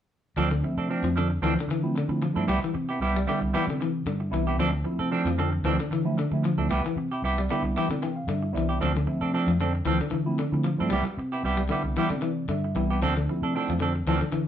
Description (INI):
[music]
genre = afrobeat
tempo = 114 BPM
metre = 4/4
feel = swing 54% on 16ths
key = D dorian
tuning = A4 = 438 Hz
[part]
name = electric guitar at the edge of break-up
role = arpeggios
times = 0.4-14.5 s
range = D3 to G3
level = -29 LUFS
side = left 4 dB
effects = none
[part]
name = semi-hollow electric guitar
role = stabs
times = 0.4-14.4 s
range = F3 to A4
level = -29 LUFS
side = right 4 dB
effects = harmonic tremolo
[part]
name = fingered electric bass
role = bass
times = 0.4-14.5 s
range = C2 to D3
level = -28 LUFS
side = equal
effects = none
[part]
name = tine electric piano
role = accompaniment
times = 0.6-13.8 s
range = F3 to G5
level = -31 LUFS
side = right 2 dB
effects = overdrive, phaser
[sound]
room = wet studio reverb, RT60 0.7 s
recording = band playing live in one room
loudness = -24 LUFS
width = side -10 dB against mid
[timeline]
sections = 0.4-14.5 A section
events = tine electric piano fill 7.7-8.8, 12.0-13.0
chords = 0.4 Dm7; 2.5 Cmaj7; 4.6 Dm7; 6.7 Cmaj7; 8.8 Dm7; 10.9 Cmaj7; 13.0 Dm7